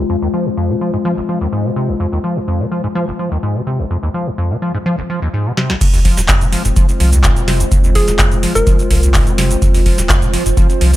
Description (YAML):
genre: acid house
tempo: 126 BPM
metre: 4/4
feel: straight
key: F minor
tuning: A4 = 440 Hz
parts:
  - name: warbly tape-like pad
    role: sustained chords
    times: 0.0-11.0 s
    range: Ab3 to C5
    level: -22 LUFS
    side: left 3 dB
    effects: chorus, built-in reverb, sidechain pumping
  - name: liquid acid bass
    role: riff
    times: 0.0-11.0 s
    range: F1 to F3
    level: -18 LUFS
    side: equal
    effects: chorus, tube saturation, sidechain pumping
  - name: booming analog drum machine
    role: drums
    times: 5.6-11.0 s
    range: cabasa, crash cymbal, handclaps, hi-hat, snare drum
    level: -18 LUFS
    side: equal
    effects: none
  - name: warm sub bass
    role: bass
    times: 5.8-11.0 s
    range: Eb1 to C2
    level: -15 LUFS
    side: equal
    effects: sidechain pumping
  - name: electronic kick drum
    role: drums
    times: 5.8-10.7 s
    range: none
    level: -13 LUFS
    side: equal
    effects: none
  - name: hollow square pluck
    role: melody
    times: 8.0-9.0 s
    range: Ab4 to Bb4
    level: -20 LUFS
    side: equal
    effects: chorus, dub echo
room: digital ambience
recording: none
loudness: -12 LUFS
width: side -15 dB against mid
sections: 0.0-5.8 A section; 5.8-11.0 B section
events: filter sweep on acid bass 0.0-5.8; drum fill 5.6; drop 5.8-11.0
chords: 0.0 Fm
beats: | 0.10 0.57 1.05 1.52 | 2.00 2.48 2.95 3.43 | 3.91 4.38 4.86 5.33 | 5.81 6.29 6.76 7.24 | 7.72 8.19 8.67 9.14 | 9.62 10.10 10.57